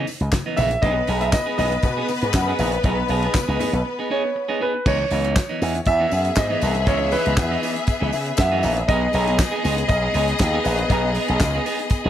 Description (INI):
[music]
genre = disco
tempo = 119 BPM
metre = 4/4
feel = straight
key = C# minor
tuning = A4 = 441 Hz
[part]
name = clean electric guitar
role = accompaniment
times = 0.0-12.1 s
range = E3 to G#4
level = -27 LUFS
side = right 3 dB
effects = none
[part]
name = slap bass with an envelope filter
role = bass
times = 0.0-12.1 s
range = A#1 to C#3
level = -22 LUFS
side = equal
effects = none
[part]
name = damped 70s drum kit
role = drums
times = 0.1-12.0 s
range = crash cymbal, handclaps, hi-hat, kick drum, snare drum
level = -23 LUFS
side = equal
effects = none
[part]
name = congas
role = percussion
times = 0.1-3.7 s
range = none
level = -33 LUFS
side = left 4 dB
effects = none
[part]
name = tambourine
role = percussion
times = 0.1-12.0 s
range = none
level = -38 LUFS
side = left 15 dB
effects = none
[part]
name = dark concert grand piano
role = melody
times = 0.6-11.1 s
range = B4 to E5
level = -25 LUFS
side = right 2 dB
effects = none
[part]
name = rich studio string section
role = second line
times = 0.8-12.1 s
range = B3 to E5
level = -25 LUFS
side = left 3 dB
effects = none
[sound]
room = light reverb, small room reverb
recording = none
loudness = -18 LUFS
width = side -11 dB against mid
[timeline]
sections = 0.0-4.9 A section; 4.9-12.1 B section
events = break 3.9-4.9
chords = 0.0 C#m9 (rootless); 0.8 B6; 4.9 C#m9; 8.9 B6